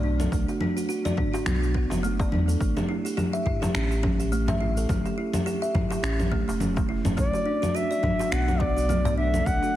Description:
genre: organic downtempo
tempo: 105 BPM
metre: 4/4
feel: swing 57% on 16ths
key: B minor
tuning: A4 = 442 Hz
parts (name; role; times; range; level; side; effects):
- kalimba; arpeggios; 0.0-9.7 s; A3 to E5; -28 LUFS; right 2 dB; low-pass filter, tape echo
- warm sub bass; bass; 0.0-9.6 s; E1 to E2; -26 LUFS; equal; sidechain pumping
- electronic congas, cabasa and finger snaps; drums; 0.2-9.7 s; none; -29 LUFS; left 1 dB; overdrive
- electronic kick drum; drums; 0.3-9.6 s; none; -28 LUFS; equal; overdrive
- darbuka; percussion; 0.5-9.7 s; none; -34 LUFS; left 1 dB; none
- bright reedy bansuri; melody; 7.2-9.8 s; D5 to F#5; -27 LUFS; left 1 dB; none
- ethereal airy pad; sustained chords; 7.9-9.8 s; F#3 to A4; -35 LUFS; left 3 dB; ensemble chorus, built-in reverb, phaser, vintage 12-bit sampler grit, sidechain pumping
room: light reverb, studio reverb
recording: heavily compressed radio sound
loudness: -23 LUFS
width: side -13 dB against mid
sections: 0.0-9.8 A section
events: none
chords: 0.0 Bm7; 2.6 A7; 7.2 Bm7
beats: | 0.32 0.89 1.46 2.04 | 2.61 3.18 3.75 4.32 | 4.89 5.46 6.04 6.61 | 7.18 7.75 8.32 8.89 | 9.46

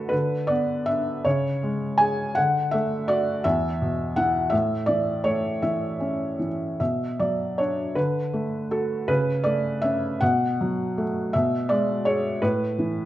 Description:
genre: classical, lyrical solo piano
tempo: 50-57 BPM (dotted quarters)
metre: 6/8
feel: rubato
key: B dorian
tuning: A4 = 439 Hz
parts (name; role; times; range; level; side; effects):
- felt-muted upright piano; solo; 0.0-13.1 s; E2 to G#5; -22 LUFS; equal; none
room: light reverb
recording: close, detailed microphones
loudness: -22 LUFS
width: side -14 dB against mid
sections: 0.0-13.1 A section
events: none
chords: 0.1 Bm/D; 1.3 C#5; 2.4 D; 3.5 E5; 4.5 A; 6.8 Bm; 8.0 D; 9.1 A/C#; 10.2 B5; 11.3 Bm69; 12.4 A5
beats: | 0.12 1.26 | 2.37 3.46 | 4.52 5.62 | 6.80 7.97 | 9.09 10.21 | 11.34 12.43

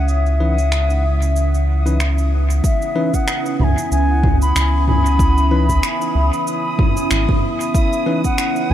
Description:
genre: ambient dub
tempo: 94 BPM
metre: 4/4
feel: swing 56% on 16ths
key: C# minor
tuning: A4 = 441 Hz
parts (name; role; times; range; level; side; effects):
- wooden flute; melody; 0.0-8.7 s; E5 to B5; -22 LUFS; left 1 dB; dub echo
- deep dark ambient pad; sustained chords; 0.0-8.7 s; C#4 to F#5; -23 LUFS; right 1 dB; chorus, built-in reverb
- round analog bass; bass; 0.0-8.7 s; G#1 to C#2; -16 LUFS; equal; tube saturation
- bubbling stepped-filter texture; texture; 0.0-8.7 s; G#3 to D#6; -30 LUFS; right 2 dB; chorus, built-in reverb
- organic electronic drum kit; drums; 0.1-8.7 s; cabasa, finger snaps, toms; -24 LUFS; right 1 dB; overdrive, dub echo
- bell-like tine electric piano; stabs; 0.4-8.2 s; E3 to B4; -26 LUFS; left 2 dB; dub echo
- electronic kick drum; drums; 2.6-8.4 s; none; -18 LUFS; equal; overdrive
room: light reverb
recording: none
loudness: -14 LUFS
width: side -11 dB against mid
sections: 0.0-2.6 A section; 2.6-8.7 B section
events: filter sweep 0.0-2.6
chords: 0.0 C#m9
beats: | 0.09 0.72 1.36 2.00 | 2.64 3.28 3.92 4.55 | 5.19 5.83 6.47 7.11 | 7.75 8.38

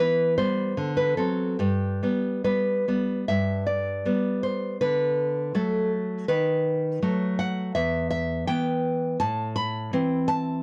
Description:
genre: romantic piece for solo classical guitar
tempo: 70-84 BPM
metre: 2/4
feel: rubato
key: G major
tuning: A4 = 440 Hz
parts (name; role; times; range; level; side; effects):
- nylon-string guitar; solo; 0.0-10.6 s; E2 to B5; -25 LUFS; equal; none
room: light reverb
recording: worn, warbling old tape, cassette tape, warbly pitch drift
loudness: -26 LUFS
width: mono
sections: 0.0-3.3 A section; 3.3-10.6 B section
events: none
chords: 0.0 Em; 0.8 D7; 1.6 G; 4.8 D; 6.3 B7/D#; 7.8 Em; 9.2 Am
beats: 0.76 | 1.59 2.44 | 3.27 4.05 | 4.80 5.55 | 6.29 7.02 | 7.75 8.48 | 9.21 9.93

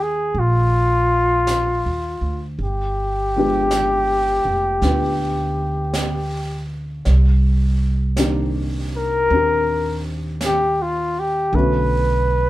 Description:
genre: jazz ballad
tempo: 54 BPM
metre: 4/4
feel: swing 68% on 8ths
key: unclear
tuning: A4 = 440 Hz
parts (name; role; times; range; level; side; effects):
- trumpet with bucket mute; melody; 0.0-12.5 s; F4 to B4; -19 LUFS; left 1 dB; none
- dark baby grand piano; accompaniment; 0.0-12.5 s; D3 to B4; -24 LUFS; left 1 dB; none
- upright bass; bass; 0.0-12.5 s; F1 to Eb2; -20 LUFS; right 1 dB; none
- jazz brush drum kit; drums; 0.3-12.5 s; brushed snare drum, hi-hat, snare drum; -31 LUFS; right 3 dB; none
room: moderate studio ambience, RT60 0.5 s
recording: band playing live in one room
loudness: -17 LUFS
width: side -16 dB against mid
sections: 0.0-12.5 A section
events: none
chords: 0.0 Ebmaj7sus2; 2.6 G7b9; 7.1 Cm9; 11.5 Bm7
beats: 0.35 1.48 | 2.60 3.71 4.83 5.94 | 7.06 8.17 9.29 10.41 | 11.53

